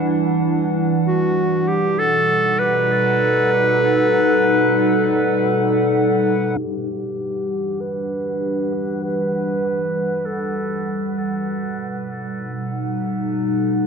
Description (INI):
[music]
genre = ambient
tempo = free time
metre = none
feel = none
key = E minor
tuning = A4 = 440 Hz
[part]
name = warbly tape-like pad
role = sustained chords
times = 0.0-13.9 s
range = B2 to F#5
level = -19 LUFS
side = equal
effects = chorus, built-in reverb
[part]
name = warm clarinet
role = melody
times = 1.1-11.2 s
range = F#4 to B4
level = -21 LUFS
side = equal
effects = vintage 12-bit sampler grit, dub echo
[sound]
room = moderate echo chamber reverb, RT60 2.0 s, small room ambience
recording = low-pass filter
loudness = -17 LUFS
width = side -6 dB against mid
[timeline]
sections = 0.0-6.6 A section; 6.6-13.9 B section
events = filter sweep on ambient pad 6.6-13.9; filter sweep 6.6-13.9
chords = 0.0 Em7; 1.7 B7; 6.6 Em7; 11.5 B7